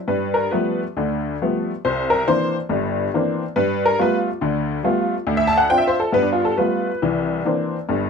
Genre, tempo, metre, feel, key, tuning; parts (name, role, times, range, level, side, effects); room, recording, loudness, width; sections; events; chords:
solo jazz; 138 BPM; 4/4; swing 65% on 8ths, rubato; G mixolydian; A4 = 440 Hz
honky-tonk upright piano; solo; 0.1-8.1 s; G1 to A5; -18 LUFS; left 1 dB
light reverb; close, detailed microphones; -18 LUFS; side -6 dB against mid
0.1-8.1 A section
honky-tonk piano solo 0.1-8.1
0.1 G9; 1.8 C9; 3.5 G9; 5.3 Dm7; 6.1 G9; 7.0 C9